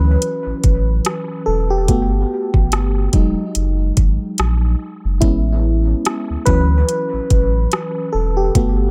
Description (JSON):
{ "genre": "contemporary R&B", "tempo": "72 BPM", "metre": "4/4", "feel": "swing 58% on 16ths", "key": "unclear", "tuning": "A4 = 438 Hz", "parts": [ { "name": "FM electric piano with tremolo", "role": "accompaniment", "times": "0.0-8.9 s", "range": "E3 to B4", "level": "-22 LUFS", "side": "equal", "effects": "dub echo" }, { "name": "warm sub bass", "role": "bass", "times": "0.0-8.9 s", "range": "E1 to D2", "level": "-19 LUFS", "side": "equal", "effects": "none" }, { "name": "smooth R&B drum kit", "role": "drums", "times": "0.2-8.8 s", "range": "hi-hat, kick drum, rim click", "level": "-20 LUFS", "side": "equal", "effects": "none" } ], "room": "little or no reverb", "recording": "echo-heavy mix", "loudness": "-17 LUFS", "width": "mono", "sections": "0.0-8.9 A section", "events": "FM electric piano solo 0.0-8.9", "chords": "0.0 Dmaj9 (rootless); 1.9 Gmaj9; 3.1 Emaj9 (rootless); 5.2 Amaj9; 6.5 Dmaj9" }